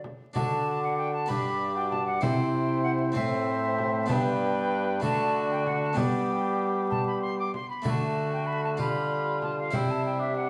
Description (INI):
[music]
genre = classical, renaissance-style consort dance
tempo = 64 BPM (dotted quarters)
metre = 6/8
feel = straight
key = D mixolydian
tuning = A4 = 440 Hz
[part]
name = harpsichord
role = accompaniment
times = 0.0-10.5 s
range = G2 to C5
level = -37 LUFS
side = equal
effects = none
[part]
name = warm trombone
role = bass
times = 0.0-10.5 s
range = G2 to G3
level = -34 LUFS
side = equal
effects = none
[part]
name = frame drum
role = percussion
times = 0.0-10.0 s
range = none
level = -35 LUFS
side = equal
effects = none
[part]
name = mellow cor anglais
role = second line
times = 0.3-10.5 s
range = D4 to D5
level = -35 LUFS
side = equal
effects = none
[part]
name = alto recorder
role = melody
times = 0.4-10.5 s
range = E5 to D6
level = -35 LUFS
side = equal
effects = none
[part]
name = clear bassoon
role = accompaniment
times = 0.4-10.5 s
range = G3 to G4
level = -35 LUFS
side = equal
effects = none
[sound]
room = wet stone room reverb, RT60 1.1 s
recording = heard from further back in the room, vinyl crackle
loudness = -28 LUFS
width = mono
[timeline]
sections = 0.4-10.5 A section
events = none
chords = 0.4 D; 1.3 G; 2.2 C; 3.2 Am; 4.1 G; 5.0 D; 6.0 G; 7.9 D; 8.8 G7/D; 9.7 C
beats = | 0.36 1.30 | 2.23 3.16 | 4.09 5.03 | 5.97 6.92 | 7.86 8.80 | 9.74